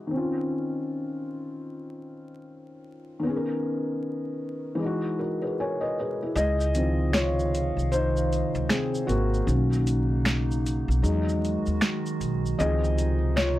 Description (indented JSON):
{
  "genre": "lo-fi hip hop",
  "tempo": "77 BPM",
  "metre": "4/4",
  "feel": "swing 62% on 16ths",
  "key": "Db major",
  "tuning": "A4 = 439 Hz",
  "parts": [
    { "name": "felt-muted upright piano", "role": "accompaniment", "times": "0.0-13.6 s", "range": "Eb3 to G#5", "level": "-28 LUFS", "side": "left 1 dB", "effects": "cassette tape, low-pass filter, plate reverb" },
    { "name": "warbly tape-like pad", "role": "sustained chords", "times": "6.9-13.6 s", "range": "C3 to F5", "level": "-32 LUFS", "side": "right 3 dB", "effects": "chorus, built-in reverb, low-pass filter, plate reverb" },
    { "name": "upright bass", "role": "bass", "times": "6.4-13.6 s", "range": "Ab1 to E2", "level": "-25 LUFS", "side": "equal", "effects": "none" },
    { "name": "booming analog drum machine", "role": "drums", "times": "6.4-13.6 s", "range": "finger snaps, hi-hat, shaker, snare drum", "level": "-28 LUFS", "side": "right 1 dB", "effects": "vintage 12-bit sampler grit" }
  ],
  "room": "moderate small room reverb, RT60 0.6 s",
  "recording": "vinyl crackle",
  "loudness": "-24 LUFS",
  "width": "side -15 dB against mid",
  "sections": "0.0-6.4 A section; 6.4-13.6 B section",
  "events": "filter sweep on felt piano 0.0-6.4; kick muted 6.4-13.6; felt piano solo 6.4-13.6",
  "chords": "0.1 Dbmaj9; 3.2 Cbmaj9; 4.8 Emaj9; 6.4 Dbmaj9; 9.5 Cbmaj9; 11.0 Emaj9; 12.6 Dbmaj9"
}